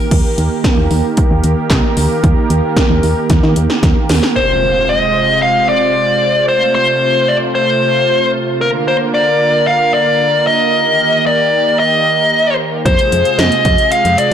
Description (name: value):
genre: synth-pop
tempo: 113 BPM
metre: 4/4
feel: straight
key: unclear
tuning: A4 = 444 Hz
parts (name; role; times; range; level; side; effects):
- warm analog pad; sustained chords; 0.0-14.3 s; C3 to C5; -17 LUFS; right 3 dB; wide subtle chorus
- solid FM bass; bass; 0.1-4.2, 12.9-14.2 s; C2 to Eb3; -14 LUFS; equal; none
- 80s electronic pad drums; drums; 0.1-4.4, 12.9-14.3 s; crash cymbal, handclaps, hi-hat, kick drum, snare drum; -14 LUFS; equal; overdrive
- dark smooth lead guitar; melody; 4.4-14.3 s; Bb4 to F5; -12 LUFS; left 2 dB; overdrive, ping-pong delay
- impact; sound effects; 4.4-6.5 s; none; -24 LUFS; right 1 dB; none
room: moderate lush hall reverb, RT60 1.7 s, digital ambience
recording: blown-out, overdriven recording, overdrive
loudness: -10 LUFS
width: side -9 dB against mid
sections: 0.1-4.4 A section; 4.4-14.3 B section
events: drum fill 3.3-4.4; impact 4.4-6.5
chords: 0.1 Eb; 4.4 Fm; 6.5 F; 8.6 Bb; 10.7 Eb; 12.9 Fm